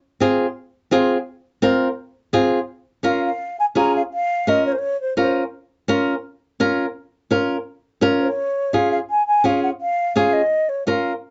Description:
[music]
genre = latin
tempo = 169 BPM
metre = 4/4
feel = straight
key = unclear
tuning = A4 = 440 Hz
[part]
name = flamenco guitar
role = accompaniment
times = 0.2-11.1 s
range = C4 to Bb4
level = -20 LUFS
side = equal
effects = none
[part]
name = mellow hollow concert flute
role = melody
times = 3.1-5.4, 8.2-11.1 s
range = C5 to Bb5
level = -22 LUFS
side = equal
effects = none
[sound]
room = light reverb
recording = nothing above 7.8 kHz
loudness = -20 LUFS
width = mono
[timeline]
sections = 0.0-2.7 A section; 2.7-11.3 B section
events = none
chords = 0.0 Fm; 2.7 Db

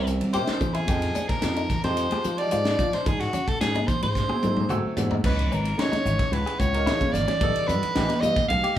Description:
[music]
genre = electric jazz fusion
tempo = 110 BPM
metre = 4/4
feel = straight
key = unclear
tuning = A4 = 439 Hz
[part]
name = edgy soprano saxophone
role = melody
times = 0.0-8.8 s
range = Gb4 to E#5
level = -27 LUFS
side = equal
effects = none
[part]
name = bright concert grand piano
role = accompaniment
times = 0.0-8.7 s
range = E3 to Ab5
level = -32 LUFS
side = right 2 dB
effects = none
[part]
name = clean electric guitar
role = stabs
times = 0.0-8.8 s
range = Db4 to Ab4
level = -34 LUFS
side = left 4 dB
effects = none
[part]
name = slap bass with an envelope filter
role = bass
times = 0.1-8.6 s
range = G#1 to F3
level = -27 LUFS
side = equal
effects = none
[part]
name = tight funk drum kit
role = drums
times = 0.1-8.8 s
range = crash cymbal, hi-hat, kick drum, ride cymbal, snare drum, toms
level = -28 LUFS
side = equal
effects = none
[part]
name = congas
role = percussion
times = 0.6-8.4 s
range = none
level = -32 LUFS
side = equal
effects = none
[part]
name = shimmering ambient pad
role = sustained chords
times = 6.4-8.8 s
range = E3 to G4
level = -35 LUFS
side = right 1 dB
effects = chorus, built-in reverb, phaser
[sound]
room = moderate large studio reverb, RT60 1.2 s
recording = band playing live in one room, small room ambience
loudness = -22 LUFS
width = side -11 dB against mid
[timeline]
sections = 0.0-5.2 A section; 5.2-8.8 B section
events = drum fill 4.2-5.2; grand piano fill 4.4-5.2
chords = 0.0 C7b9; 0.9 Fm9; 3.1 Ab7b9; 5.2 C#m9; 7.4 B7b13

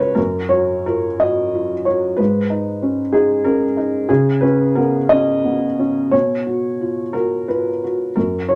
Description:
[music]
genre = neoclassical minimalist piano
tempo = 57-64 BPM (dotted quarters)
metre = 6/8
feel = rubato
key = unclear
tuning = A4 = 436 Hz
[part]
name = felt-muted upright piano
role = solo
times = 0.0-8.6 s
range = F#2 to D#5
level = -18 LUFS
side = equal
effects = none
[sound]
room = moderate studio reverb, RT60 0.5 s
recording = none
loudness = -18 LUFS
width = mono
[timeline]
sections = 0.2-8.6 A section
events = none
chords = 0.2 F#maj7; 2.2 G#madd9; 4.1 Bmaj13/C#; 6.1 Bsus2

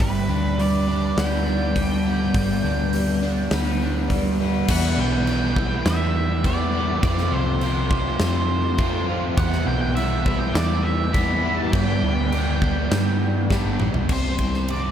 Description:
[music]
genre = rock, shoegaze and dream pop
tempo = 102 BPM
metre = 4/4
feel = straight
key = G major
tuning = A4 = 441 Hz
[part]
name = octave-fuzz lead guitar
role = melody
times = 0.0-14.9 s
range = B4 to B5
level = -29 LUFS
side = right 2 dB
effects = distortion, analog delay
[part]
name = crunchy overdriven guitar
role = riff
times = 0.0-14.9 s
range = E2 to G4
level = -23 LUFS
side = equal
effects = wide subtle chorus
[part]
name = hollow-body short-scale fingered electric bass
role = bass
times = 0.0-14.9 s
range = G1 to G2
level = -24 LUFS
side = equal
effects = none
[part]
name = huge arena drum kit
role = drums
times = 0.0-14.8 s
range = crash cymbal, hi-hat, kick drum, ride cymbal, snare drum, toms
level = -25 LUFS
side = equal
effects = none
[sound]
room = wet cathedral reverb, RT60 6.7 s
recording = dreamy mix soaked in reverb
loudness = -19 LUFS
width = side -9 dB against mid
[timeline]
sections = 0.0-4.7 A section; 4.7-14.1 B section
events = drum fill 13.5-14.1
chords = 0.0 G; 4.7 Em7; 7.0 F; 9.4 Em; 11.7 G; 14.1 C5

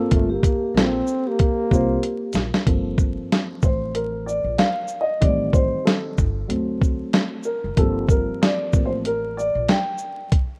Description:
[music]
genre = hip hop, jazz-hop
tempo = 94 BPM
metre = 4/4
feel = swing 60% on 16ths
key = G minor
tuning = A4 = 440 Hz
[part]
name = dark baby grand piano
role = accompaniment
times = 0.0-10.3 s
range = Eb3 to G5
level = -26 LUFS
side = equal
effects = none
[part]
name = breathy trombone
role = melody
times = 0.1-2.4 s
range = A3 to C4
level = -28 LUFS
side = equal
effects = tape echo
[part]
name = vibraphone with soft mallets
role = second line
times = 0.1-2.3 s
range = F4 to A4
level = -30 LUFS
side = equal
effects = none
[part]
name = upright bass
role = bass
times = 0.1-9.7 s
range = F#1 to D2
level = -31 LUFS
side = equal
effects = none
[part]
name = dusty soul sampler-style drum kit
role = drums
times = 0.1-10.5 s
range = hi-hat, kick drum, shaker, snare drum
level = -22 LUFS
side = equal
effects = none
[sound]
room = light reverb, small room ambience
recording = rough home demo mix, vinyl crackle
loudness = -21 LUFS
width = mono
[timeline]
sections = 0.0-2.7 A section; 2.7-10.6 B section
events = drum fill 2.0-2.7; grand piano solo 2.7-10.6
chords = 0.0 Gm11; 5.2 Am7b5; 6.5 D7; 7.8 Gm11

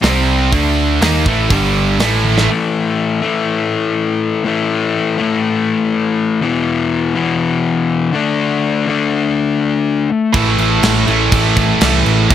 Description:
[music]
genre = hard rock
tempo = 122 BPM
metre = 4/4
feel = straight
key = unclear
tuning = A4 = 440 Hz
[part]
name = cranked stack guitar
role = riff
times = 0.0-2.5, 10.3-12.3 s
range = G2 to D#4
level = -18 LUFS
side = right 11 dB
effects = overdrive
[part]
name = overdriven electric guitar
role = riff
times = 0.0-12.3 s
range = E2 to D#4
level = -15 LUFS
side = left 5 dB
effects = none
[part]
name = scooped high-gain guitar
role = riff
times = 0.0-2.5, 10.3-12.3 s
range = G2 to D#4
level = -20 LUFS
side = right 3 dB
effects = distortion
[part]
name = overdriven picked electric bass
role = bass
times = 0.0-2.5, 10.3-12.3 s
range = G1 to D#2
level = -17 LUFS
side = right 1 dB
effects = none
[part]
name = tight metal drum kit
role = drums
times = 0.0-2.5, 10.3-12.3 s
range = crash cymbal, hi-hat, kick drum, snare drum, toms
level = -18 LUFS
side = right 1 dB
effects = none
[sound]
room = light reverb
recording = none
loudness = -13 LUFS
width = side -10 dB against mid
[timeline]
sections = 0.0-2.5 A section; 2.5-12.3 B section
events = drum fill 2.2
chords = 0.0 C5; 0.5 D5; 1.0 A5; 1.5 G5; 2.0 A5; 6.4 E5; 8.1 D5; 10.3 A5

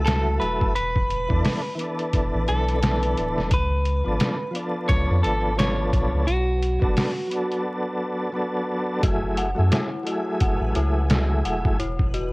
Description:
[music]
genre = trip hop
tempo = 87 BPM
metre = 4/4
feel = swing 58% on 16ths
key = F# minor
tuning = A4 = 440 Hz
[part]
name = tonewheel organ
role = accompaniment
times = 0.0-11.8 s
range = E3 to A4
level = -27 LUFS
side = equal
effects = chorus vibrato, tremolo, vintage 12-bit sampler grit
[part]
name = soft dub sub bass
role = bass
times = 0.0-12.3 s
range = D1 to F#2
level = -24 LUFS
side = equal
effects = none
[part]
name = backwards swelling texture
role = texture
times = 0.0-12.3 s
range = B4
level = -39 LUFS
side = right 1 dB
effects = none
[part]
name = clean electric guitar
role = melody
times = 0.1-7.6 s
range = F#4 to C#5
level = -27 LUFS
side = equal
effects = tape echo
[part]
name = trip hop sampler-style drum kit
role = drums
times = 0.1-12.3 s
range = hi-hat, kick drum, snare drum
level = -24 LUFS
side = equal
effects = none
[part]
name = dark detuned synth bell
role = arpeggios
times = 9.0-12.3 s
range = E4 to F#5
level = -30 LUFS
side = left 2 dB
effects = chorus, vintage 12-bit sampler grit, tape echo
[sound]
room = little or no reverb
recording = worn, warbling old tape, cassette tape, vinyl crackle, warbly pitch drift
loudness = -20 LUFS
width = side -25 dB against mid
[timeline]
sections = 0.0-9.0 A section; 9.0-12.3 B section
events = break 7.7-9.0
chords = 0.0 F#m7; 0.8 E7sus4; 3.5 C#7b9b13; 6.3 Bm7; 9.0 F#m9; 11.8 E5

